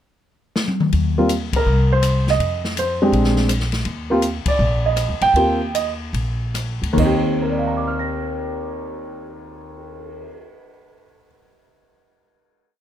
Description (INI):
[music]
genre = jazz piano trio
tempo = 139-164 BPM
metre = 4/4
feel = swing 65% on 8ths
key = Eb major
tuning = A4 = 440 Hz
[part]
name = open jazz drum kit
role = drums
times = 0.6-10.3 s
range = crash cymbal, cymbal swell, hi-hat, kick drum, ride cymbal, rim click, snare drum, toms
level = -25 LUFS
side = left 3 dB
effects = none
[part]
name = upright bass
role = bass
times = 0.9-10.2 s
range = Bb1 to F2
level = -22 LUFS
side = equal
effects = none
[part]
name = warm baby grand piano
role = melody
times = 1.2-11.3 s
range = Eb2 to Bb6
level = -19 LUFS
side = right 1 dB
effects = none
[sound]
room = light reverb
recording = none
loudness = -17 LUFS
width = side -10 dB against mid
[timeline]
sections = 0.0-0.9 pickup bar; 0.9-7.0 A section; 7.0-10.4 final chord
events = drum fill 0.6-0.9; band accent 1.5, 4.4; slowing down 3.9-7.0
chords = 0.0 N.C.; 0.9 Eb5; 1.7 C7(no3); 2.4 F7(no3); 3.1 Bb13; 3.9 Eb; 7.0 Eb6